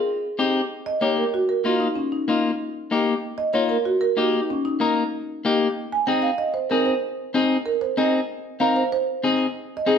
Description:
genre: latin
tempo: 190 BPM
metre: 4/4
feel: straight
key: Eb major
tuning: A4 = 440 Hz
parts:
  - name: marimba with medium mallets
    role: melody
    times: 0.0-10.0 s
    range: Db4 to Ab5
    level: -23 LUFS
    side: right 3 dB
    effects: none
  - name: clean electric guitar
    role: accompaniment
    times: 0.4-10.0 s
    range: Bb3 to Bb4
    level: -23 LUFS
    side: left 3 dB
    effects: none
room: moderate large studio reverb, RT60 1.1 s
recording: band playing live in one room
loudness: -20 LUFS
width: side -7 dB against mid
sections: 0.7-10.0 A section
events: marimba solo 0.7-10.0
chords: 0.0 Ab; 0.7 Ebadd9; 5.8 Ab

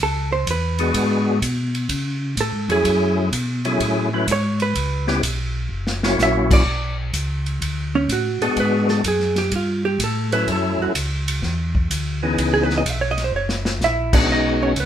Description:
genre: soul jazz organ trio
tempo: 126 BPM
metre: 4/4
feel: swing 68% on 8ths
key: F# minor, B minor from 6.7 s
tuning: A4 = 442 Hz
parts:
  - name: hollow-body jazz guitar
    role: accompaniment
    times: 0.0-14.9 s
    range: B3 to E5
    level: -22 LUFS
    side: right 4 dB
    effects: none
  - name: mellow tonewheel organ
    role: bass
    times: 0.0-14.9 s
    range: F#1 to C#3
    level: -23 LUFS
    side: equal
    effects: chorus vibrato, slow rotary speaker
  - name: vintage drum kit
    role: drums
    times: 0.5-14.9 s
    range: crash cymbal, hi-hat, kick drum, ride cymbal, snare drum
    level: -25 LUFS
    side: equal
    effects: none
  - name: percussive tonewheel organ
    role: melody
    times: 0.8-14.7 s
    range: E3 to B4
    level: -20 LUFS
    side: left 2 dB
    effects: slow rotary speaker, overdrive, chorus vibrato
room: moderate studio reverb, RT60 0.8 s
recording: minimal, uncompressed stereo recording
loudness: -18 LUFS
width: side -10 dB against mid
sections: 0.0-6.7 A section; 6.7-14.9 A section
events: hollow-body jazz guitar solo 0.0-14.9; drum fill 5.7-6.2, 13.3-13.8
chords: 0.0 A6; 0.9 G#m7b5; 1.9 C#; 2.9 F#m9; 4.8 C#m7b5; 5.7 F#7; 6.7 Bm7; 8.6 G#m7b5; 9.5 Gsus2; 10.5 F#m7; 12.4 C#m9; 13.3 F#13; 14.3 B69

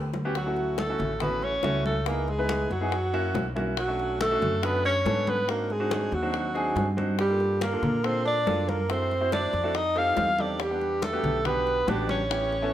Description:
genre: Afro-Cuban jazz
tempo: 140 BPM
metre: 4/4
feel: straight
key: unclear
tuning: A4 = 442 Hz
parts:
  - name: mellow alto saxophone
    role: melody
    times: 0.0-12.7 s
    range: F#4 to F5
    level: -28 LUFS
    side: equal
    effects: none
  - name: breathy tenor saxophone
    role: second line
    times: 0.0-12.7 s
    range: F#3 to F4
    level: -32 LUFS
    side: right 2 dB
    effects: none
  - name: warm upright piano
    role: accompaniment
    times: 0.0-12.7 s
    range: A3 to F#5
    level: -31 LUFS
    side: equal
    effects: none
  - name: upright bass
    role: bass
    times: 0.0-12.7 s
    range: A1 to Bb2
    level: -31 LUFS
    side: equal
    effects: none
  - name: bongos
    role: percussion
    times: 0.1-12.7 s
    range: none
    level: -36 LUFS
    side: left 8 dB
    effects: none
  - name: congas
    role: percussion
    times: 0.1-12.7 s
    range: none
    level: -35 LUFS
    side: left 1 dB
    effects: none
room: moderate large studio reverb, RT60 1.2 s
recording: none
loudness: -24 LUFS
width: side -12 dB against mid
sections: 0.4-12.7 A section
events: drum fill 0.0-0.4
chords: 0.4 Dmaj7; 2.1 C#m7; 2.9 F#7; 3.8 Bm7; 5.5 G#7#11; 7.2 Gm7; 8.9 F#m7b5; 9.8 F9; 10.6 Em7

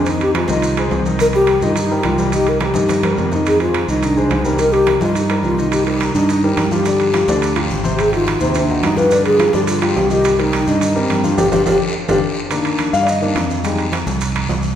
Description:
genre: Afro-Cuban jazz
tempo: 212 BPM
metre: 4/4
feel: straight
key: C minor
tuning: A4 = 440 Hz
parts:
  - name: mellow hollow wooden-headed alto flute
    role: melody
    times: 0.0-12.2 s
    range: C4 to B4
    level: -17 LUFS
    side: left 1 dB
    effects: none
  - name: warm concert grand piano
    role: accompaniment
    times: 0.0-13.8 s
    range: C3 to F5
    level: -20 LUFS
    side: left 2 dB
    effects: none
  - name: fingered electric bass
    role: bass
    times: 0.0-14.8 s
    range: G1 to G2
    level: -21 LUFS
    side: right 2 dB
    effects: none
  - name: congas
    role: percussion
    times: 0.1-14.6 s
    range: none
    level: -25 LUFS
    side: left 1 dB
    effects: none
  - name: maracas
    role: percussion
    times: 0.1-14.8 s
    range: none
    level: -33 LUFS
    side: right 3 dB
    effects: none
  - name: timbales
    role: percussion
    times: 0.1-14.6 s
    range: none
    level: -24 LUFS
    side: right 5 dB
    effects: none
  - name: guiro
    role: percussion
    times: 5.7-14.8 s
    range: none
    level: -31 LUFS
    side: left 4 dB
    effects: none
room: wet concert hall reverb, RT60 2.1 s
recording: recorded in a church or concert hall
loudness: -14 LUFS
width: side -10 dB against mid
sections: 0.0-12.5 A section; 12.5-14.8 B section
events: drum fill 2.9-3.5, 12.1-12.5; band accent 11.4-12.5; grand piano solo 12.5-14.8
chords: 0.1 Fm7; 1.2 Cm7; 3.5 Fm7; 4.6 Cm7; 6.9 G5; 8.0 Ab7; 9.1 G5; 10.2 Cm7; 11.4 G5; 12.5 F13sus4; 13.6 Fm7

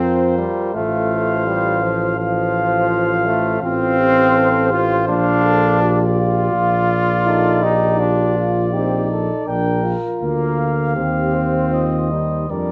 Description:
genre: classical, brass quintet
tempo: 82 BPM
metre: 4/4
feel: rubato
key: F major, Bb major from 3.6 s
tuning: A4 = 440 Hz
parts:
  - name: mellow trumpet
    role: melody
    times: 0.0-12.7 s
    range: C5 to G5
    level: -25 LUFS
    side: equal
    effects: none
  - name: dark flugelhorn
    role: second line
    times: 0.0-12.7 s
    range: F4 to C5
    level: -28 LUFS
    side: equal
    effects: none
  - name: bright trombone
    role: accompaniment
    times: 0.0-12.7 s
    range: F3 to F4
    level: -22 LUFS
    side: equal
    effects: none
  - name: warm French horn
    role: accompaniment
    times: 0.0-12.7 s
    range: D4 to A4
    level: -26 LUFS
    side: equal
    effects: none
  - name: mellow tuba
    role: bass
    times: 0.0-12.7 s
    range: A1 to F2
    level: -23 LUFS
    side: equal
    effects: none
room: moderate large studio reverb, RT60 1.2 s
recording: none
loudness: -18 LUFS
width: mono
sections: 0.0-12.7 A section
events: none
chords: 0.0 F5; 0.7 F/A; 5.1 Bb; 6.5 F7/Bb; 9.5 Bb; 11.0 Cm/Eb

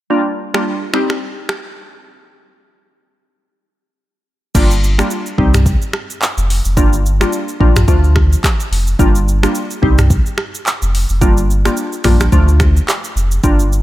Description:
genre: afrobeats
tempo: 108 BPM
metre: 4/4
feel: swing 58% on 16ths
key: G minor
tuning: A4 = 442 Hz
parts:
  - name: glassy wavetable pluck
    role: accompaniment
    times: 0.1-1.1, 4.5-13.6 s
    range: F3 to G4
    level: -18 LUFS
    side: equal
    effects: chorus
  - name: afro-pop drum kit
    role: drums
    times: 0.5-13.8 s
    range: crash cymbal, finger snaps, handclaps, hi-hat, kick drum, rim click, shaker, toms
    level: -16 LUFS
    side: equal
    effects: none
  - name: warm sub bass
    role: bass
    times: 4.5-13.8 s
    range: F1 to D2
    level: -13 LUFS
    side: equal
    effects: none
room: digital ambience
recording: none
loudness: -12 LUFS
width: side -15 dB against mid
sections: 0.1-4.5 A section; 4.5-13.8 B section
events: break 2.3-4.5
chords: 0.1 Gm7; 0.9 Cm; 2.3 N.C.; 4.5 Gm7; 5.4 Cm; 6.8 Gm7; 7.9 Dm; 9.0 Gm7; 9.8 Cm; 11.2 Gm7; 12.3 Dm

